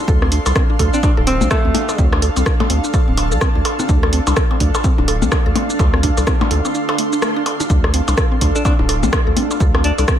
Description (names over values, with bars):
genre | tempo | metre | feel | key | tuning
minimal techno | 126 BPM | 4/4 | swing 60% on 16ths | D minor | A4 = 440 Hz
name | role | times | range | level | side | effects
granular cloud pad | texture | 0.0-10.2 s | D4 to C6 | -23 LUFS | right 2 dB | built-in reverb, sidechain pumping
mallet-like synth pluck | riff | 0.1-10.1 s | A3 to A4 | -24 LUFS | equal | chorus, sidechain pumping, tape echo
saturated sub bass | bass | 0.1-10.1 s | D1 to D2 | -18 LUFS | equal | tube saturation, sidechain pumping
electronic kick drum | drums | 0.1-10.2 s | none | -16 LUFS | equal | none
punchy analog drum machine | drums | 0.1-10.2 s | hi-hat, rim click, shaker | -22 LUFS | equal | none
percussion blips | percussion | 0.2-10.1 s | none | -24 LUFS | left 3 dB | none
breathy alto saxophone | melody | 0.9-2.2, 8.6-10.0 s | A3 to D4 | -22 LUFS | equal | ping-pong delay
room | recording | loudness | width
light reverb, digital ambience | none | -13 LUFS | side -10 dB against mid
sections
0.0-10.2 A section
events
break 6.7-7.7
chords
0.0 Dm